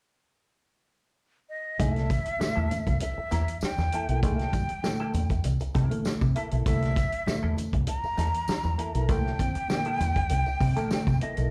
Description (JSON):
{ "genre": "funk", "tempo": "99 BPM", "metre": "4/4", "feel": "straight", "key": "C mixolydian", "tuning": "A4 = 442 Hz", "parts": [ { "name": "breathy silver concert flute", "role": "melody", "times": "1.5-11.5 s", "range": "Eb5 to Bb5", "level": "-34 LUFS", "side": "equal", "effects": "slapback echo" }, { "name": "clean electric guitar", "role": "accompaniment", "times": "1.8-11.5 s", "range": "Bb3 to Bb4", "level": "-39 LUFS", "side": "equal", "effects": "wah, lush chorus, slapback echo" }, { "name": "reed electric piano", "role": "stabs", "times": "1.8-11.1 s", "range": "Bb2 to C4", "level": "-35 LUFS", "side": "equal", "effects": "slapback echo" }, { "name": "deep dub fingered electric bass", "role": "bass", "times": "1.8-11.5 s", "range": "B1 to C3", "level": "-29 LUFS", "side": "equal", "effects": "none" }, { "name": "warm soul drum kit", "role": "drums", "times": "1.8-11.5 s", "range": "hi-hat, kick drum, snare drum", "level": "-32 LUFS", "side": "equal", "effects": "none" }, { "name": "congas", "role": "percussion", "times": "1.8-11.2 s", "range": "none", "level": "-43 LUFS", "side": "equal", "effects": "none" }, { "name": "tambourine", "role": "percussion", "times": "1.8-11.5 s", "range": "none", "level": "-51 LUFS", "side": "equal", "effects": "none" } ], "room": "light reverb", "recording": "live gig heard through the venue's PA, club reverb", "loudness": "-27 LUFS", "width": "mono", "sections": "0.0-1.8 A section; 1.8-11.5 B section", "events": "none", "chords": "0.0 N.C.; 1.8 C13" }